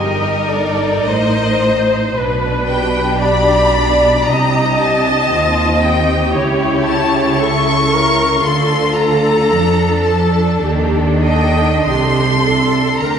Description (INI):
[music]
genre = classical, slow romantic movement for string orchestra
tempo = 45-59 BPM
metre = 4/4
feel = rubato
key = unclear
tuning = A4 = 440 Hz
[part]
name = clear studio violin section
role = melody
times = 0.0-13.2 s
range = Bb4 to C#6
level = -19 LUFS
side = left 3 dB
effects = none
[part]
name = rich studio violin section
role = second line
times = 0.0-13.2 s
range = C4 to C5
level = -19 LUFS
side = left 1 dB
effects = none
[part]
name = rich studio viola section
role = accompaniment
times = 0.0-13.2 s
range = G4 to Eb5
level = -17 LUFS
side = equal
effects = none
[part]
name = rich studio cello section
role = bass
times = 0.0-13.2 s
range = G2 to F3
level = -19 LUFS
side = right 2 dB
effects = none
[part]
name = rich studio double bass section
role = bass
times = 0.0-13.2 s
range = G1 to F2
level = -20 LUFS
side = right 2 dB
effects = none
[sound]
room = wet scoring stage reverb, RT60 1.9 s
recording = nothing above 11.0 kHz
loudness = -12 LUFS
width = side -7 dB against mid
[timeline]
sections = 0.0-13.2 A section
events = none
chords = 0.0 Eb/G; 2.2 G/B; 4.3 Cm; 6.4 A7/C#; 8.5 Dm; 10.6 Cm/Eb